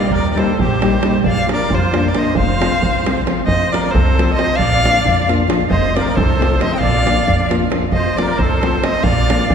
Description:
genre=balkan folk, Balkan wedding band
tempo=269 BPM (eighths)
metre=5/8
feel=straight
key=F mixolydian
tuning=A4 = 441 Hz
part: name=warm violin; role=melody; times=0.0-9.5 s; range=C5 to G5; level=-19 LUFS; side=left 1 dB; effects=none
part: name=musette accordion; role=second line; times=0.0-9.5 s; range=F4 to Eb5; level=-22 LUFS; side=right 3 dB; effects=none
part: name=nylon-string guitar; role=accompaniment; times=0.0-9.4 s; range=F3 to G4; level=-20 LUFS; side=left 2 dB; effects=none
part: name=upright bass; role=bass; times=0.1-9.5 s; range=F1 to F2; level=-19 LUFS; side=equal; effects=none
part: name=davul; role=percussion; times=0.1-9.5 s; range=none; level=-20 LUFS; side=right 2 dB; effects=none
room=wet cathedral reverb, RT60 4.5 s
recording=recorded in a church or concert hall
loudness=-13 LUFS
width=side -7 dB against mid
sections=0.0-3.5 A section; 3.5-9.5 B section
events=none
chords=0.0 Eb; 1.2 Bb; 2.4 F; 4.6 Bb; 5.7 F; 6.8 Bb; 7.9 F; 9.0 Bb

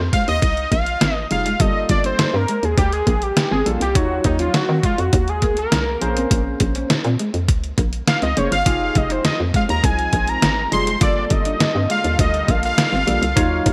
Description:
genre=early-eighties boogie funk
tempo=102 BPM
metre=4/4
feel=straight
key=unclear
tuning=A4 = 443 Hz
part: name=electric guitar at the edge of break-up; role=riff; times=0.0-13.7 s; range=G3 to F4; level=-31 LUFS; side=equal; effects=none
part: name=hollow knocking FM bass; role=bass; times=0.0-13.7 s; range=F1 to Eb3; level=-25 LUFS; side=equal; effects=none
part: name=fat analog lead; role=melody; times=0.1-13.7 s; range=Eb4 to C6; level=-23 LUFS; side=equal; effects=none
part: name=detuned 8-bit digital drum machine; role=drums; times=0.1-13.7 s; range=hi-hat, kick drum, snare drum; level=-22 LUFS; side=equal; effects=overdrive, gated reverb
part: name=barky tine electric piano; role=accompaniment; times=1.3-13.7 s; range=Gb3 to Db5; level=-29 LUFS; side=equal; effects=analog chorus
part: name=lush unison pad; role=sustained chords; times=9.1-13.7 s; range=D3 to A4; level=-33 LUFS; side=equal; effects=none
room=light reverb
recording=bright 1980s-style digital production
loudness=-19 LUFS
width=mono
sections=0.0-13.7 A section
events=analog synth lead solo 0.0-13.7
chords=0.0 Fm7; 1.6 Gm9; 4.0 Ebm9; 6.0 Bbm9; 8.7 Fm9; 11.0 Gm9

